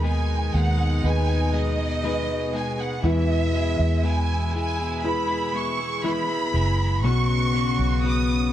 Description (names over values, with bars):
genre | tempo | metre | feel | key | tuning
pop | 60 BPM | 4/4 | straight | unclear | A4 = 439 Hz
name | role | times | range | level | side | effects
clear grand piano | accompaniment | 0.0-8.5 s | B2 to B4 | -27 LUFS | left 2 dB | none
warm studio string section | sustained chords | 0.0-8.5 s | B2 to F#4 | -32 LUFS | equal | none
direct-recorded clean electric guitar | arpeggios | 0.0-8.5 s | D#3 to B4 | -32 LUFS | left 7 dB | none
vintage muted fingered electric bass | bass | 0.0-8.5 s | F#1 to E2 | -23 LUFS | right 1 dB | none
warm symphonic violin section | melody | 0.1-8.5 s | D#5 to D#6 | -28 LUFS | right 3 dB | none
room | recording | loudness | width
light reverb | dark, warm production | -21 LUFS | side -12 dB against mid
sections
0.0-8.5 A section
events
none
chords
0.0 G#m/D#; 3.0 E; 7.0 Bsus2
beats
0.04 1.04 2.04 | 3.04 4.04 5.04 6.04 | 7.04 8.04